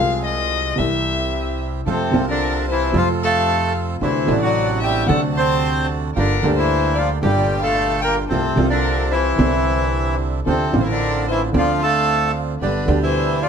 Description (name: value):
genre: tango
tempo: 112 BPM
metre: 4/4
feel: rubato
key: F major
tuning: A4 = 440 Hz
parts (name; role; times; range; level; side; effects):
- warm violin; second line; 0.0-13.5 s; A4 to A5; -24 LUFS; left 8 dB; none
- warm upright piano; accompaniment; 0.0-13.5 s; G1 to G4; -22 LUFS; right 1 dB; none
- bandoneon; stabs; 0.0-13.5 s; F3 to A5; -28 LUFS; right 7 dB; none
- upright bass; bass; 0.0-13.5 s; G1 to F2; -23 LUFS; right 2 dB; none
- bandoneon; melody; 1.9-13.5 s; C3 to C5; -21 LUFS; right 1 dB; none
room: light reverb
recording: none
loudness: -16 LUFS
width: side -7 dB against mid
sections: 0.0-1.9 A section; 1.9-13.5 B section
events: violin solo 0.0-1.9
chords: 0.0 Fm/C; 0.8 C; 1.9 F; 4.0 D7; 6.2 Gm7; 8.3 F/C; 9.4 Cadd9; 10.5 Dm7; 12.6 G